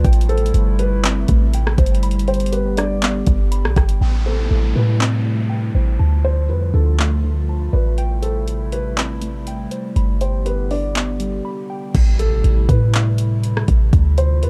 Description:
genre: hip hop, atmospheric cloud-rap.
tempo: 121 BPM.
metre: 4/4.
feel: half-time.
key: A minor.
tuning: A4 = 440 Hz.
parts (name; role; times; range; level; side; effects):
felt-muted upright piano; melody; 0.0-14.5 s; A4 to D5; -29 LUFS; equal; tape echo.
warbly tape-like pad; sustained chords; 0.0-14.5 s; C3 to G4; -29 LUFS; equal; chorus, built-in reverb, sidechain pumping.
warbly dusty pluck; arpeggios; 0.0-11.9 s; D3 to B5; -32 LUFS; equal; chorus, tape echo.
clean 808-style bass; bass; 0.0-14.5 s; G1 to A2; -19 LUFS; equal; none.
smooth R&B drum kit; drums; 0.0-14.5 s; crash cymbal, handclaps, hi-hat, kick drum, rim click; -21 LUFS; equal; overdrive.
downlifter and impact; sound effects; 4.0-8.0, 11.9-13.9 s; none; -34 LUFS; equal; none.
room: little or no reverb.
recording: dark, warm production.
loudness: -18 LUFS.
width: mono.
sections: 0.0-4.0 A section; 4.0-11.9 B section; 11.9-14.5 C section.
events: break 11.4-11.9; impact 11.9-13.9.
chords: 0.0 Am7; 2.0 G; 4.0 Am7; 6.0 Dm; 8.0 Am7; 10.0 G; 11.9 Am7; 13.9 Dm.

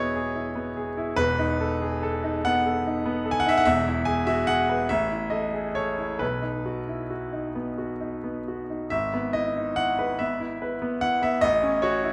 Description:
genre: classical, romantic character piece for solo piano.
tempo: 43-51 BPM (dotted quarters).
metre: 6/8.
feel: rubato.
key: E major.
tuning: A4 = 440 Hz.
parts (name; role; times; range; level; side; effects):
clear grand piano; solo; 0.0-12.1 s; E1 to G#5; -26 LUFS; equal; none.
room: wet recital hall reverb, RT60 1.7 s.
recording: dark, warm production.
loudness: -26 LUFS.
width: mono.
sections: 0.0-12.1 A section.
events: none.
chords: 0.0 E; 1.2 B7/E; 3.7 E; 4.9 A5; 6.2 B; 8.9 E/G#; 11.4 F#m/A.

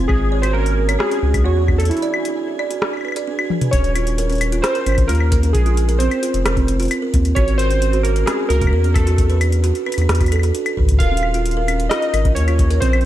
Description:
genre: IDM.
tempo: 132 BPM.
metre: 4/4.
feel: straight.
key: Eb dorian.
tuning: A4 = 440 Hz.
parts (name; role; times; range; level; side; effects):
warbly lo-fi synth keys; melody; 0.0-13.1 s; E4 to F5; -22 LUFS; right 1 dB; chorus, digital delay.
buzzing kalimba; arpeggios; 0.0-12.9 s; C4 to D5; -23 LUFS; right 4 dB; vintage 12-bit sampler grit, ping-pong delay.
round analog bass; bass; 0.0-13.1 s; Eb1 to Fb2; -17 LUFS; equal; tube saturation.
flickering grainy texture; texture; 0.0-3.7 s; Ab4 to Ab6; -36 LUFS; right 1 dB; built-in reverb.
booming analog drum machine; drums; 0.1-13.1 s; claves, hi-hat, rim click, toms; -24 LUFS; left 2 dB; none.
electronic kick drum; drums; 0.1-12.9 s; none; -18 LUFS; equal; none.
room: light reverb, digital ambience.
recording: dark, warm production.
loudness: -15 LUFS.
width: side -13 dB against mid.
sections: 0.0-3.7 A section; 3.7-13.1 B section.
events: break 1.9-3.7; drum fill 3.5.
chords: 0.1 Ab9sus4; 1.7 Esus2; 3.7 Eb9sus4; 5.5 Bb7sus2; 7.4 Ab9sus4; 9.0 Esus4; 11.0 Eb9sus4.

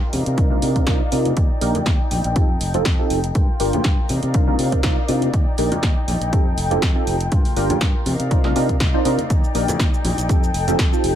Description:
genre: filtered disco house.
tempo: 121 BPM.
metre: 4/4.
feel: swing 54% on 16ths.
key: unclear.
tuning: A4 = 442 Hz.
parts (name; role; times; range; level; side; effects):
warm studio violin section; sustained chords; 0.0-11.2 s; Eb4 to G5; -27 LUFS; left 2 dB; sidechain pumping, low-pass filter.
overdriven fingered electric bass; bass; 0.1-11.2 s; F1 to C3; -24 LUFS; equal; sidechain pumping, low-pass filter.
punchy analog drum machine; drums; 0.1-11.1 s; hi-hat, shaker, snare drum; -27 LUFS; right 1 dB; sidechain pumping on hats, sidechain pumping on perc.
tambourine and congas; percussion; 0.1-11.1 s; none; -28 LUFS; left 2 dB; sidechain pumping on perc, low-pass filter on perc.
funky polysynth comp; accompaniment; 0.4-11.1 s; Bb3 to C5; -23 LUFS; right 1 dB; chorus, phaser, vintage 12-bit sampler grit, sidechain pumping, low-pass filter.
electronic kick drum; drums; 0.4-10.9 s; none; -19 LUFS; equal; none.
room: little or no reverb.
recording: none.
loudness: -16 LUFS.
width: side -10 dB against mid.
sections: 0.0-11.2 A section.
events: filter sweep 0.0-11.2.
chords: 0.1 Cm11; 1.4 Ebmaj7; 2.4 F9; 3.4 Gm7; 4.1 Cm11; 5.3 Ebmaj7; 6.3 F9; 7.3 Gm7; 8.1 Cm11; 9.3 Ebmaj7; 10.3 F9.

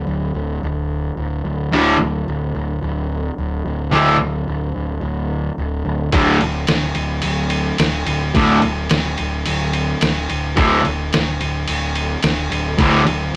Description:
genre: garage rock duo or trio.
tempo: 108 BPM.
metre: 4/4.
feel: straight.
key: unclear.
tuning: A4 = 440 Hz.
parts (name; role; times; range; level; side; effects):
fuzz picked electric bass; bass; 0.0-13.4 s; D1; -23 LUFS; equal; overdrive.
fuzz guitar; riff; 1.7-13.0 s; D2 to D3; -17 LUFS; equal; distortion.
lo-fi sampler-style drum kit; drums; 6.1-13.2 s; kick drum, ride cymbal, snare drum; -22 LUFS; equal; none.
room: moderate studio reverb, RT60 0.6 s.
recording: rough rehearsal-room recording, tube saturation.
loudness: -19 LUFS.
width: mono.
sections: 0.0-13.4 A section.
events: none.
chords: 0.0 D5.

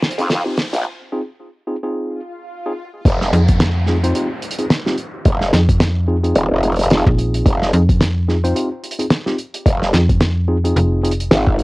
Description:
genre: glitch hop.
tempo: 109 BPM.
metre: 4/4.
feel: swing 58% on 16ths.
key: F minor.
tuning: A4 = 440 Hz.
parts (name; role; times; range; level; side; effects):
damped 70s drum kit; drums; 0.0-11.6 s; hi-hat, snare drum; -19 LUFS; equal; cassette tape.
riser, swell and downlifter; sound effects; 0.0-7.5 s; none; -31 LUFS; equal; none.
clear symphonic string section; texture; 0.0-0.9 s; F4 to Ab5; -34 LUFS; equal; none.
tine electric piano; stabs; 0.2-11.6 s; C4 to C5; -22 LUFS; equal; sidechain pumping, cassette tape, analog delay.
growl bass; bass; 0.2-11.6 s; Eb1 to F2; -16 LUFS; equal; chorus, tube saturation, high-pass filter.
electronic kick drum; drums; 3.1-11.6 s; none; -14 LUFS; equal; cassette tape.
slap-like FM bass; bass; 3.3-11.3 s; F1 to F2; -15 LUFS; equal; none.
room: little or no reverb.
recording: home recording on cassette, high-pass filter.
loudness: -14 LUFS.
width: side -22 dB against mid.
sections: 0.0-3.1 A section; 3.1-11.6 B section.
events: build-up 0.0-3.1; drum fill 0.0-0.9; riser 0.0-0.9; filter sweep 0.0-3.1; break 0.9-3.1; swell 2.2-3.1; drop 3.1-11.6.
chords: 0.0 Fm7.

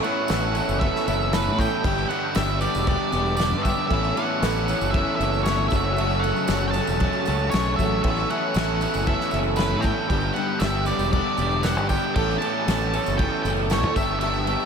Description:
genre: indie rock.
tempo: 116 BPM.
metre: 4/4.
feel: straight.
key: unclear.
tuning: A4 = 441 Hz.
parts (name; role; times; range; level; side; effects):
octave-fuzz lead guitar; melody; 0.0-14.7 s; B4 to A5; -26 LUFS; equal; distortion, analog delay.
raw garage guitar; riff; 0.0-14.7 s; E3 to A4; -27 LUFS; right 7 dB; overdrive, analog chorus, analog delay.
twelve-string electric guitar; riff; 0.0-14.7 s; F#2 to A4; -28 LUFS; left 8 dB; none.
loose indie drum kit; drums; 0.0-14.6 s; crash cymbal, kick drum, snare drum; -27 LUFS; equal; none.
tambourine; percussion; 0.0-14.7 s; none; -44 LUFS; right 9 dB; none.
growling fingered electric bass; bass; 0.3-14.5 s; E1 to A2; -26 LUFS; equal; overdrive.
room: moderate huge ambient reverb, RT60 8.0 s.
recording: dreamy mix soaked in reverb.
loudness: -20 LUFS.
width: side -6 dB against mid.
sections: 0.0-14.7 A section.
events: none.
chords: 0.0 Aadd9; 1.8 G; 3.9 Aadd9; 5.7 F#m; 8.0 Aadd9; 10.1 G; 12.2 Aadd9; 14.0 Gadd9.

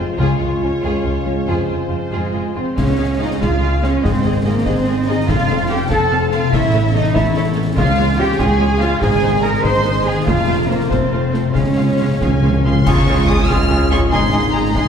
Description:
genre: cinematic, heroic adventure film score.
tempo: 95 BPM (dotted quarters).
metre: 6/8.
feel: straight.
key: unclear.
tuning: A4 = 436 Hz.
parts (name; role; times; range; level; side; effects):
rich symphonic violin section; melody; 0.0-14.9 s; C5 to F6; -27 LUFS; left 2 dB; none.
rich symphonic violin section; second line; 0.0-14.8 s; C4 to C6; -24 LUFS; left 3 dB; none.
rich symphonic viola section; accompaniment; 0.0-14.8 s; Ab3 to A4; -26 LUFS; right 1 dB; none.
mellow French horn section; sustained chords; 0.0-2.5, 12.8-14.9 s; Ab3 to F4; -23 LUFS; equal; none.
concert harp; arpeggios; 0.0-14.9 s; F2 to F6; -22 LUFS; left 6 dB; none.
rich symphonic cello section; bass; 0.0-14.9 s; Db2 to C5; -20 LUFS; right 3 dB; none.
rich symphonic double bass section; bass; 0.0-14.9 s; F1 to Db2; -20 LUFS; right 2 dB; none.
timpani; percussion; 0.2-4.6, 7.8-8.4, 11.6-12.8 s; Ab2 to Db3; -23 LUFS; left 1 dB; none.
concert snare drum, clash cymbals and concert bass drum; drums; 2.8-14.9 s; none; -23 LUFS; equal; none.
cymbal swell, clash cymbals and concert bass drum; percussion; 10.3-13.7 s; none; -22 LUFS; equal; none.
concert flute; second line; 12.9-14.8 s; Ab5; -27 LUFS; equal; none.
warm clarinet; second line; 12.9-14.8 s; Eb4 to F4; -29 LUFS; left 1 dB; none.
warm oboe; second line; 12.9-14.8 s; Ab4; -27 LUFS; equal; none.
room: wet scoring stage reverb, RT60 1.6 s.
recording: heard from further back in the room.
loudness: -14 LUFS.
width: side -7 dB against mid.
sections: 0.0-2.8 A section; 2.8-12.9 B section; 12.9-14.9 B section.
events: build-up 0.0-2.8; timpani fill 11.6-12.9; band accent 12.9-13.3.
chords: 0.2 Db; 1.5 Fm; 2.8 Db; 4.0 Ab; 5.3 F; 6.5 A; 7.8 Db; 9.0 Ab; 10.3 F; 11.6 Db; 14.1 Ab.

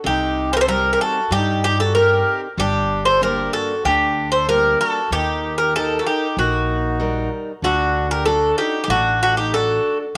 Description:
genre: greek folk, Greek bouzouki band.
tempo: 95 BPM.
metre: 4/4.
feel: straight.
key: D phrygian dominant.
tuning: A4 = 440 Hz.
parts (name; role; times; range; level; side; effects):
picked steel-string acoustic guitar; accompaniment; 0.0-10.0 s; C3 to Bb4; -30 LUFS; equal; none.
upright bass; bass; 0.0-10.2 s; G1 to G2; -28 LUFS; equal; none.
Greek bouzouki; melody; 0.1-10.0 s; F#4 to C5; -20 LUFS; equal; none.
accordion; second line; 0.1-10.0 s; D4 to A4; -29 LUFS; equal; none.
room: moderate echo chamber reverb, RT60 1.4 s, small room reverb.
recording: none.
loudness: -19 LUFS.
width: mono.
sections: 0.0-10.2 A section.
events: none.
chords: 0.1 Cm; 2.6 Gm; 5.1 Eb; 7.6 D.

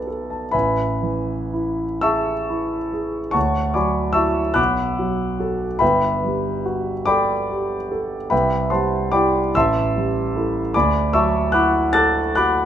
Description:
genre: classical, impressionist solo piano.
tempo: 39-51 BPM (dotted quarters).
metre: 6/8.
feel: rubato.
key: unclear.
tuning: A4 = 440 Hz.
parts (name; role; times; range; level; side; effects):
warm concert grand piano; solo; 0.0-12.7 s; G1 to A6; -18 LUFS; equal; none.
room: moderate recital hall reverb, RT60 1.6 s.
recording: minimal, uncompressed stereo recording.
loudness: -18 LUFS.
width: side -10 dB against mid.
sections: 0.5-12.7 A section.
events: none.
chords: 0.0 Bm7; 0.5 Amaj9; 3.4 Dadd9; 4.6 Bm7; 5.8 Gmaj9; 8.3 Cadd9; 9.5 Am7; 10.7 Dadd9.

